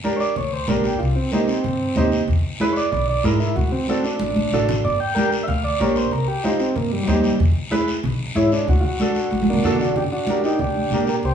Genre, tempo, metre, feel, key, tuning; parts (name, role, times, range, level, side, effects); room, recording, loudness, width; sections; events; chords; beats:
latin, cumbia; 188 BPM; 4/4; straight; G harmonic minor; A4 = 440 Hz
bright upright piano; accompaniment; 0.0-11.2 s; D4 to C#5; -24 LUFS; right 1 dB
congas; percussion; 0.0-11.3 s; -25 LUFS; equal
guiro; percussion; 0.0-11.3 s; -34 LUFS; left 3 dB
combo organ; melody; 0.2-11.3 s; F#3 to G5; -22 LUFS; right 1 dB
upright bass; bass; 0.4-11.3 s; G1 to Bb2; -23 LUFS; equal
wet large studio reverb, RT60 0.9 s; band playing live in one room, small room ambience; -18 LUFS; side -8 dB against mid
0.0-10.0 A section; 10.0-11.3 B section
transistor combo organ solo 0.0-10.0; drum fill 4.2-4.8, 9.3-10.0
0.0 Gm; 1.0 Cm; 2.3 E; 3.6 D; 4.8 Gm; 6.1 Cm; 7.4 E; 8.7 D; 10.0 Gm
0.04 0.36 0.69 | 1.00 1.32 1.65 1.97 | 2.29 2.60 2.92 3.25 | 3.56 3.88 4.20 4.52 | 4.84 5.16 5.48 5.80 | 6.12 6.44 6.76 7.08 | 7.40 7.72 8.04 8.36 | 8.68 9.00 9.32 9.64 | 9.96 10.28 10.60 10.92 | 11.24